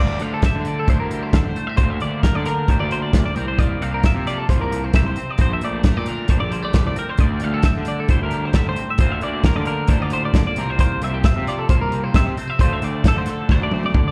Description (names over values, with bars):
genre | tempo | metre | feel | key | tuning
math rock and midwest emo | 133 BPM | 4/4 | straight | D minor | A4 = 440 Hz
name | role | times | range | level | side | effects
twelve-string electric guitar | accompaniment | 0.0-14.1 s | D2 to F4 | -30 LUFS | equal | subtle chorus, slapback echo
twelve-string electric guitar | arpeggios | 0.0-14.1 s | G4 to F5 | -28 LUFS | equal | spring reverb, digital delay, slapback echo
fuzz picked electric bass | bass | 0.0-14.1 s | Bb1 to D3 | -27 LUFS | equal | overdrive
loose indie drum kit | drums | 0.2-14.1 s | hi-hat, kick drum, snare drum, toms | -20 LUFS | equal | none
room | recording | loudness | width
small room ambience | live gig heard through the venue's PA, club reverb | -20 LUFS | mono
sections
0.0-14.1 A section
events
drum fill 13.5-14.1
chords
0.0 Dm11; 1.8 Bbadd9/D; 3.4 C7sus4; 5.4 Bbmaj9; 7.2 D9sus4; 9.0 Bbmaj9/D; 10.6 C7sus4; 12.6 Dm9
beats
0.44 0.89 1.34 | 1.79 2.24 2.69 3.15 | 3.60 4.05 4.50 4.95 | 5.40 5.85 6.30 6.75 | 7.20 7.65 8.10 8.55 | 9.00 9.45 9.90 10.35 | 10.80 11.25 11.70 12.15 | 12.60 13.05 13.50 13.95